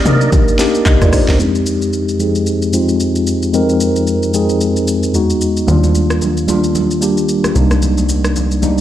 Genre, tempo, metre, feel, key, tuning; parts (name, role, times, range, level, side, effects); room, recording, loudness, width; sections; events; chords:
amapiano; 112 BPM; 4/4; swing 58% on 16ths; F dorian; A4 = 441 Hz
mellow tine electric piano; accompaniment; 0.0-8.8 s; E2 to Eb5; -14 LUFS; left 1 dB; medium stereo tremolo, low-pass filter
deep log drum bass; bass; 0.1-1.4 s; C2 to C3; -12 LUFS; equal
afro-pop drum kit; drums; 0.1-8.8 s; handclaps, hi-hat, kick drum, rim click, shaker, snare drum; -20 LUFS; equal
congas; percussion; 0.1-1.4, 5.7-8.8 s; -24 LUFS; right 5 dB
plucky analog bass; bass; 5.7-8.8 s; C2 to Eb2; -16 LUFS; equal
little or no reverb; played on a big sound system in a bare room, stone room reverb; -12 LUFS; side -12 dB against mid
0.0-1.4 A section; 1.4-8.8 B section
drop 0.0-1.4; filter sweep on tine electric piano 1.4-8.8
0.0 Cm9; 1.4 Fm9; 5.1 Emaj9; 5.7 Ebmaj9; 7.6 Cm9